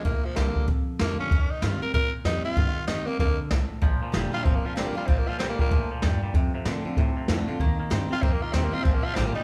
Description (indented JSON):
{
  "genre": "rockabilly",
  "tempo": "191 BPM",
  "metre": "4/4",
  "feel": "swing 61% on 8ths",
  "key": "Bb major",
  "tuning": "A4 = 440 Hz",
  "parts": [
    { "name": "growling tenor saxophone", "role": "melody", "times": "0.0-5.9, 8.1-9.4 s", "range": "F3 to Bb4", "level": "-32 LUFS", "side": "equal", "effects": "none" },
    { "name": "picked steel-string acoustic guitar", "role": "accompaniment", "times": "0.0-9.4 s", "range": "F2 to F4", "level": "-35 LUFS", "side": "equal", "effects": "none" },
    { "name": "jazz brush drum kit", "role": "drums", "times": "0.0-9.3 s", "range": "hi-hat, kick drum, snare drum", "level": "-29 LUFS", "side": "equal", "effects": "none" },
    { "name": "upright bass", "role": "bass", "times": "0.1-9.4 s", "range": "F1 to Bb2", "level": "-31 LUFS", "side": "equal", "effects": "none" },
    { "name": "twangy electric guitar", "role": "riff", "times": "3.8-9.4 s", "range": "F2 to C4", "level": "-35 LUFS", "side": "equal", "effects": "none" }
  ],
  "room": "wet large studio reverb, RT60 1.1 s",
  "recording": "band playing live in one room",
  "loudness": "-25 LUFS",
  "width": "mono",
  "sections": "0.0-9.4 A section",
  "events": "none",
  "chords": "0.0 Bb6; 1.3 Eb6; 3.8 Bb6; 6.3 F6; 7.6 Eb6; 8.9 Bb6",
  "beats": "| 0.05 0.37 0.68 1.00 | 1.31 1.63 1.94 2.26 | 2.57 2.88 3.20 3.51 | 3.83 4.14 4.46 4.77 | 5.09 5.40 5.71 6.03 | 6.34 6.66 6.97 7.29 | 7.60 7.91 8.23 8.54 | 8.86 9.17"
}